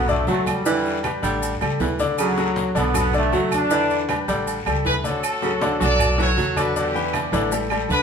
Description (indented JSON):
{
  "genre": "latin, salsa",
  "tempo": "158 BPM",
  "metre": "4/4",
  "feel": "straight",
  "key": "D major",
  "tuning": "A4 = 439 Hz",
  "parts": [
    { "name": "bright trombone section", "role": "melody", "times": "0.0-4.3 s", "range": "F#3 to D4", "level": "-23 LUFS", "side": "equal", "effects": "none" },
    { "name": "warm baritone saxophone", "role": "second line", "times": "0.0-8.0 s", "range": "C#3 to G3", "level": "-26 LUFS", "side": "right 4 dB", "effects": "none" },
    { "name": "bright grand piano", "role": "accompaniment", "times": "0.0-8.0 s", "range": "D3 to G5", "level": "-24 LUFS", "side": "left 3 dB", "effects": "none" },
    { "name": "upright bass", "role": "bass", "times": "0.0-8.0 s", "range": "A1 to E2", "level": "-27 LUFS", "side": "equal", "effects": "none" },
    { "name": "congas", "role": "percussion", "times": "0.1-8.0 s", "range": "none", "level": "-32 LUFS", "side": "left 1 dB", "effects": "none" },
    { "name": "maracas", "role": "percussion", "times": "0.1-8.0 s", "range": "none", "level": "-37 LUFS", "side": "left 5 dB", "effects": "none" },
    { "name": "agogo bells and timbales", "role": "percussion", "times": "0.3-7.9 s", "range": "none", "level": "-30 LUFS", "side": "right 4 dB", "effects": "none" },
    { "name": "guiro", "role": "percussion", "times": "0.3-8.0 s", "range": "none", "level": "-38 LUFS", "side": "left 4 dB", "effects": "none" },
    { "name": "claves", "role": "percussion", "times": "0.5-7.9 s", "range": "none", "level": "-36 LUFS", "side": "right 9 dB", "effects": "none" },
    { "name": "bright horn section", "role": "melody", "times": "4.9-8.0 s", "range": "B3 to D5", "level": "-23 LUFS", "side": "right 1 dB", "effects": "none" }
  ],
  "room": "wet large studio reverb, RT60 1.0 s",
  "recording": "band playing live in one room",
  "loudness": "-19 LUFS",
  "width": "side -6 dB against mid",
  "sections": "0.0-5.2 A section; 5.2-8.0 B section",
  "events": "none",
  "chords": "0.0 Bm7; 0.7 Em7; 1.4 A7sus4; 2.2 Dmaj7; 2.9 Bm7; 3.7 Em7; 4.5 A7sus4; 5.2 Dmaj7; 6.0 Bm7; 6.8 Em7; 7.5 A7sus4"
}